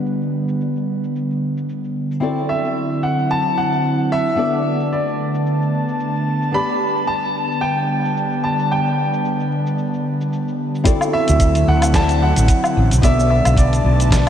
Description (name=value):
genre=sunset chillout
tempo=111 BPM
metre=4/4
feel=swing 56% on 16ths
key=G major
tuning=A4 = 440 Hz
part: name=nylon-string guitar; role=accompaniment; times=0.0-14.3 s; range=B3 to D5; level=-24 LUFS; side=left 2 dB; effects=auto-pan, analog delay
part: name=airy breathy pad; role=sustained chords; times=0.0-14.3 s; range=D3 to A5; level=-20 LUFS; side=equal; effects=chorus
part: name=dusty soul sampler-style drum kit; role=drums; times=0.1-14.3 s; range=cabasa, hi-hat, snare drum, woodblock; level=-23 LUFS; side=left 1 dB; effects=low-pass filter on perc, low-pass filter on hats, low-pass filter on snare
part: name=warm grand piano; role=melody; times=2.5-14.3 s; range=D5 to B5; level=-21 LUFS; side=equal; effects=analog delay
part: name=electronic kick drum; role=drums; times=10.9-14.2 s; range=none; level=-16 LUFS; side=right 1 dB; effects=none
part: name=fretless electric bass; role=bass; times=11.3-14.3 s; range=A1 to D2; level=-16 LUFS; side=right 1 dB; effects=ensemble chorus
room=wet lush hall reverb, RT60 2.7 s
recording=dreamy mix soaked in reverb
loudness=-16 LUFS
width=side -9 dB against mid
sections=0.0-10.9 A section; 10.9-14.3 B section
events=filter sweep on analog synth pad 0.0-10.9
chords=0.0 Gmaj7; 2.2 D9; 4.4 Bm7; 6.5 G; 10.9 D9; 13.0 Bm7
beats=| 0.05 0.59 1.13 1.67 | 2.21 2.76 3.30 3.84 | 4.38 4.92 5.46 6.00 | 6.54 7.08 7.62 8.16 | 8.70 9.24 9.78 10.32 | 10.86 11.40 11.95 12.48 | 13.03 13.57 14.11